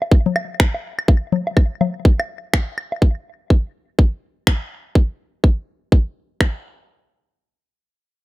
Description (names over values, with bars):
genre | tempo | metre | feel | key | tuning
minimal techno | 124 BPM | 4/4 | swing 60% on 16ths | none | none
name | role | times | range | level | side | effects
woodblock and congas | percussion | 0.0-3.0 s | none | -21 LUFS | left 4 dB | overdrive, ping-pong delay
electronic kick drum | drums | 0.1-6.5 s | none | -13 LUFS | equal | none
electronic finger snaps | drums | 0.6-6.5 s | none | -21 LUFS | equal | none
room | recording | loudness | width
digital ambience | none | -17 LUFS | side -18 dB against mid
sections
0.0-6.9 A section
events
none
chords
none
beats
0.11 0.60 | 1.08 1.57 2.05 2.53 | 3.02 3.50 3.98 4.47 | 4.95 5.44 5.92 6.41